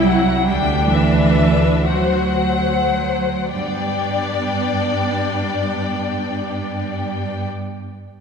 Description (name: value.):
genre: classical, slow romantic movement for string orchestra.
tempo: 33-48 BPM (dotted quarters).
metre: 6/8.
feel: rubato.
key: G major.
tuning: A4 = 441 Hz.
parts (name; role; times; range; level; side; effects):
warm studio violin section; melody; 0.0-7.5 s; E4 to D5; -25 LUFS; left 7 dB; none.
rich studio violin section; second line; 0.0-7.5 s; E5 to G5; -24 LUFS; left 4 dB; none.
rich studio viola section; accompaniment; 0.0-7.5 s; B3 to F#4; -24 LUFS; equal; none.
rich studio cello section; bass; 0.0-7.5 s; E3 to G3; -22 LUFS; right 2 dB; none.
warm studio double bass section; bass; 0.0-7.5 s; C2 to G2; -22 LUFS; right 2 dB; none.
room: wet concert hall reverb, RT60 2.0 s.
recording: heard from further back in the room.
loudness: -16 LUFS.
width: side -6 dB against mid.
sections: 0.0-3.5 A section; 3.5-8.2 B section.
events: slowing down 0.0-3.5.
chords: 0.5 G/D; 1.9 D7; 3.5 G.